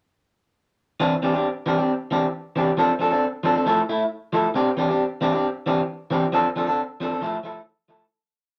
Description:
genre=highlife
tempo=135 BPM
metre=4/4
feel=straight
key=C major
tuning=A4 = 440 Hz
part: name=electric guitar at the edge of break-up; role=solo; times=1.0-8.0 s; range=E3 to A4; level=-22 LUFS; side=equal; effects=none
room=moderate studio reverb, RT60 0.5 s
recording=none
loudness=-23 LUFS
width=mono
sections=1.0-8.1 groove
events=fade-out 6.3-8.1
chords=1.0 Cadd9; 2.8 F6; 3.7 Fmaj7; 4.6 Cadd9; 6.3 F6; 7.2 Fmaj7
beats=| 1.00 1.44 1.89 2.33 | 2.78 3.22 3.66 4.11 | 4.55 5.00 5.44 5.88 | 6.33 6.77 7.22 7.66

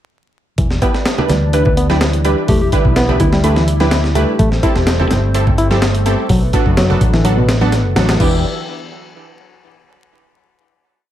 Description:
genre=breakbeat, breaks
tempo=126 BPM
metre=4/4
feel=straight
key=E minor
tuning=A4 = 440 Hz
part: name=lush unison pad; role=sustained chords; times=0.6-8.4 s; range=D3 to E5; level=-23 LUFS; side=equal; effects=chorus, sidechain pumping
part: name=barky reed electric piano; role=riff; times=0.6-8.4 s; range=A2 to E4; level=-20 LUFS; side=left 1 dB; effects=overdrive, ping-pong delay
part: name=fingered electric bass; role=bass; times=0.6-8.4 s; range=E1 to D2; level=-16 LUFS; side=equal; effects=none
part: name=breakbeat sampler-style drum kit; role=drums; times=0.6-8.3 s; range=crash cymbal, hi-hat, kick drum, snare drum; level=-17 LUFS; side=equal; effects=none
part: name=congas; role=percussion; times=0.6-8.1 s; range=none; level=-23 LUFS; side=right 1 dB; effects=none
part: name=orchestra-hit-like synth stab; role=stabs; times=0.8-8.4 s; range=B3 to B4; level=-20 LUFS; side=right 2 dB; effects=built-in reverb, ping-pong delay
part: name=soft struck synth lead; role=melody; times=1.5-4.0 s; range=E4 to B4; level=-23 LUFS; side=left 2 dB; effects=chorus, small speaker sound, cassette tape, ping-pong delay
room=light reverb, digital ambience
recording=vinyl crackle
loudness=-12 LUFS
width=side -12 dB against mid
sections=0.6-8.2 drop; 8.2-10.1 final chord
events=drop 0.6-8.2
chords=0.6 Em7; 4.4 Am7; 6.3 Bm7; 8.2 Em7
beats=| 0.58 1.06 1.53 2.01 | 2.48 2.96 3.44 3.91 | 4.39 4.87 5.34 5.82 | 6.29 6.77 7.25 7.72 | 8.20

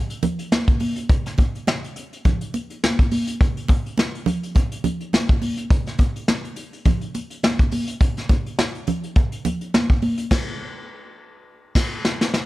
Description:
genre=funk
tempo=104 BPM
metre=4/4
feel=swing 56% on 16ths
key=none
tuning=none
part: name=vintage brush drum kit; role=drums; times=0.1-12.5 s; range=crash cymbal, hi-hat, kick drum, snare drum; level=-19 LUFS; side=equal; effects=none
part: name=congas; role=percussion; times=0.2-10.2 s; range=none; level=-25 LUFS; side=right 2 dB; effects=none
room=little or no reverb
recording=none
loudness=-19 LUFS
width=side -18 dB against mid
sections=0.0-12.5 A section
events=band accent 10.3-12.5; drum fill 11.5-12.5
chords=none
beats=0.52 | 1.10 1.67 2.25 2.83 | 3.40 3.98 4.55 5.13 | 5.71 6.28 6.86 7.43 | 8.01 8.59 9.16 9.74 | 10.31 10.89 11.46 12.04

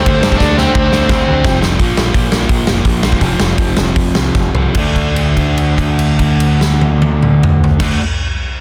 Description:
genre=punk rock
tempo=146-174 BPM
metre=4/4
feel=straight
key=D minor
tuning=A4 = 443 Hz
part: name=biting overdriven guitar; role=melody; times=0.0-1.6 s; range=C4 to D4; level=-18 LUFS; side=equal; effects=slapback echo
part: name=sludgy distorted guitar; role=riff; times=0.0-8.0 s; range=F2 to D4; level=-21 LUFS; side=equal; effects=overdrive
part: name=sludgy distorted guitar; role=riff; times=0.0-8.0 s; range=F2 to D4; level=-20 LUFS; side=equal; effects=overdrive
part: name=thick fuzz guitar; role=riff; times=0.0-1.4 s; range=D3 to D4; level=-24 LUFS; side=equal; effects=none
part: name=growling picked electric bass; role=bass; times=0.0-8.0 s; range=F1 to G2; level=-19 LUFS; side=equal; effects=overdrive
part: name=big rock drum kit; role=drums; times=0.1-7.9 s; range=crash cymbal, hi-hat, kick drum, ride cymbal, snare drum, toms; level=-17 LUFS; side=equal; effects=none
room=little or no reverb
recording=dense, heavily limited modern master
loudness=-13 LUFS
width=mono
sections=0.0-1.8 A section; 1.8-4.8 B section; 4.8-8.1 C section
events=drum fill 0.4-1.8, 4.4-4.8; slowing down 1.8-4.8; held note 4.8-7.8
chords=0.0 D5; 1.4 F5; 1.8 Bb5; 3.2 F5; 4.8 D5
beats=0.06 | 0.41 0.75 1.10 1.45 | 1.79 2.14 2.49 2.85 | 3.21 3.58 3.96 4.35 | 4.76 5.17 5.58 5.99 | 6.40 6.82 7.23 7.64

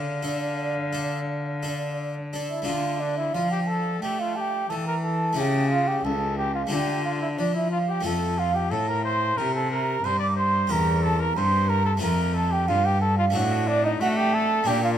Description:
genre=classical, baroque-style sonata movement with continuo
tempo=90 BPM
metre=4/4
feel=rubato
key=D minor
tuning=A4 = 439 Hz
part: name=warm trumpet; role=melody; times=0.0-15.0 s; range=D4 to F5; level=-31 LUFS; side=left 8 dB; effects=none
part: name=mellow hollow wooden flute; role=second line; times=0.0-14.9 s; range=D5 to D6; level=-26 LUFS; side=right 5 dB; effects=none
part: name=harpsichord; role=accompaniment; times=0.0-15.0 s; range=C#2 to A4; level=-31 LUFS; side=left 3 dB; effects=none
part: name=rich cello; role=bass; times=0.0-15.0 s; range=C#2 to A3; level=-26 LUFS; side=equal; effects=none
room=moderate recital hall reverb, RT60 1.8 s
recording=none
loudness=-22 LUFS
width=side -10 dB against mid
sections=0.0-2.7 A section; 2.7-15.0 B section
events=none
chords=0.0 Dm; 5.4 A/C#; 6.7 Dm; 8.0 F; 10.7 C/E; 12.0 F; 13.3 D5/A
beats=0.57 1.28 1.98 | 2.67 3.35 4.03 4.70 | 5.37 6.04 6.71 7.38 | 8.05 8.72 9.38 10.04 | 10.71 11.37 12.02 12.68 | 13.35 14.01 14.67

